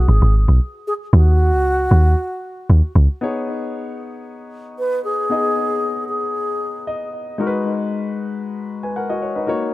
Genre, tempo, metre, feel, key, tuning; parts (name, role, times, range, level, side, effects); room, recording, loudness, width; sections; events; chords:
amapiano; 115 BPM; 4/4; straight; B major; A4 = 440 Hz
wooden-headed alto flute; melody; 0.0-7.1 s; F#4 to B4; -21 LUFS; equal; analog delay
deep log drum bass; bass; 0.0-3.1 s; G#1 to D#2; -12 LUFS; equal
warm concert grand piano; accompaniment; 3.2-9.7 s; G#3 to G#5; -23 LUFS; left 3 dB; analog delay
studio reverb; echo-heavy mix; -16 LUFS; side -18 dB against mid
0.0-3.2 A section; 3.2-9.7 B section
drop 0.0-3.2; grand piano fill 6.6-7.4
0.0 G#m; 1.1 D#m7; 3.2 B69; 7.4 G#m7